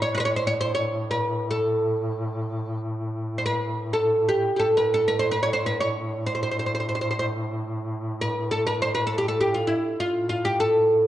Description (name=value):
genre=Arabic maqam ensemble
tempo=free time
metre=none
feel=none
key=A maqam saba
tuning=A4 = 443 Hz
part: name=oud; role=melody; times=0.0-11.1 s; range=E4 to C#5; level=-22 LUFS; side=equal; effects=none
part: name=warm duduk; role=drone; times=0.0-11.1 s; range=A2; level=-30 LUFS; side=equal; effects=none
room=moderate recital hall reverb, RT60 1.5 s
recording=dark, warm production, nothing above 10.6 kHz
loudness=-22 LUFS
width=side -13 dB against mid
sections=0.0-11.1 A section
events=none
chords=none